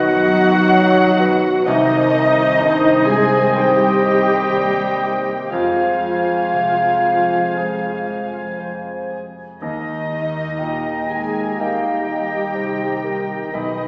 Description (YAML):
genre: cinematic, emotional film score for orchestra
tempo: 58-65 BPM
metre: 4/4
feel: rubato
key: Eb major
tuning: A4 = 443 Hz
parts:
  - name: muted studio violin section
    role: melody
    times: 0.0-13.9 s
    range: Eb5 to Ab5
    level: -25 LUFS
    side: equal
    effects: none
  - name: clear oboe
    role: second line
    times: 0.0-13.9 s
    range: Eb5 to B5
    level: -25 LUFS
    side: equal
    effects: none
  - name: mellow clarinet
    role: second line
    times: 0.0-13.9 s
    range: C5 to D#5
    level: -25 LUFS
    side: equal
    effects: none
  - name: mellow hollow concert flute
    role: second line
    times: 0.0-13.9 s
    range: Bb4 to G5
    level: -22 LUFS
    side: equal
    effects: none
  - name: muted studio violin section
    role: second line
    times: 0.0-13.9 s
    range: Eb5 to Ab5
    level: -26 LUFS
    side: equal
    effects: none
  - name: clear concert grand piano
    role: accompaniment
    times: 0.0-13.9 s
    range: B1 to D#5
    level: -27 LUFS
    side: equal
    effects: none
  - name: muted studio viola section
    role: accompaniment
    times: 0.0-13.9 s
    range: Eb4 to Ab4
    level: -20 LUFS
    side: equal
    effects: none
  - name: mellow French horn section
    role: sustained chords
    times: 0.0-13.9 s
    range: Eb3 to Eb4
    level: -26 LUFS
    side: equal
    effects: none
  - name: concert harp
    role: arpeggios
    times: 0.0-13.9 s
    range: B2 to G5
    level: -29 LUFS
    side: equal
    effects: none
  - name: muted studio cello section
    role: bass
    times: 0.0-13.9 s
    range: Eb3 to Ab3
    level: -26 LUFS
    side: equal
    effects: none
  - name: muted studio double bass section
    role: bass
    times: 0.0-13.9 s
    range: B1 to F2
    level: -31 LUFS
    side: equal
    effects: none
room: wet scoring stage reverb, RT60 2.1 s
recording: heard from further back in the room, small speaker sound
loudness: -14 LUFS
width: side -31 dB against mid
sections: 0.0-13.9 A section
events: none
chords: 0.0 B; 1.7 Cm; 5.5 Fm; 9.6 Eb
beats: 0.73 | 1.66 2.59 3.54 4.51 | 5.51 6.52 7.55 8.58 | 9.61 10.60 11.59 12.57 | 13.54